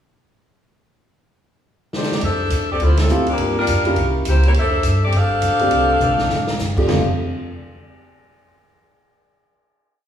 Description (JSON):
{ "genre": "jazz, big band swing", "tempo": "206 BPM", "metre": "4/4", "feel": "swing 61% on 8ths", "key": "F major", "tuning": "A4 = 440 Hz", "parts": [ { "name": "swinging big-band drum kit", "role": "drums", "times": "1.9-7.0 s", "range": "crash cymbal, hi-hat, kick drum, ride cymbal, snare drum, toms", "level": "-25 LUFS", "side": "right 1 dB", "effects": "none" }, { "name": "warm saxophone section", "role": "melody", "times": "2.0-6.6 s", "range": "F3 to F5", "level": "-19 LUFS", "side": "left 2 dB", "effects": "none" }, { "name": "upright bass", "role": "bass", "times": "2.2-7.0 s", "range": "F1 to A2", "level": "-19 LUFS", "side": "equal", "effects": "none" }, { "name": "warm grand piano", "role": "accompaniment", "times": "3.1-7.2 s", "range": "F2 to G4", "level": "-22 LUFS", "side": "right 1 dB", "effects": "none" } ], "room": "wet recital hall reverb, RT60 1.4 s", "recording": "heard from further back in the room, small room reverb", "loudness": "-15 LUFS", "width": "side -9 dB against mid", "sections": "1.1-2.2 pickup bar; 2.2-6.9 A section; 6.9-8.1 final chord", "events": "drum fill 1.9, 6.0-6.6; band accent 3.0", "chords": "1.1 Amadd11; 2.2 F6; 2.8 Dm11; 3.4 Gm7; 4.0 C7b9; 4.6 F69" }